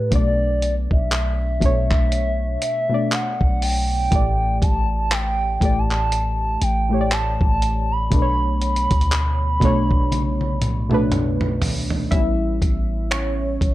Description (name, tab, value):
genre	contemporary R&B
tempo	60 BPM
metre	4/4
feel	swing 58% on 16ths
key	B minor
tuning	A4 = 439 Hz
part	gliding portamento lead	melody	0.0-11.1 s	B4 to B5	-24 LUFS	equal	chorus
part	warm analog keys	accompaniment	0.0-13.7 s	A2 to E5	-24 LUFS	equal	chorus
part	warm 808-style bass	bass	0.0-13.7 s	A1 to A2	-23 LUFS	equal	none
part	dusty soul sampler-style drum kit	drums	0.1-13.7 s	finger snaps, handclaps, hi-hat, kick drum, toms	-21 LUFS	equal	none
room	little or no reverb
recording	dry, gritty hardware recording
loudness	-18 LUFS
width	side -16 dB against mid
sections	0.0-12.1 A section; 12.1-13.7 B section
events	drum fill 10.1-12.1; synth keys solo 12.1-13.7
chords	0.1 Bm9; 4.1 A7sus4; 8.1 Bm9; 12.1 A7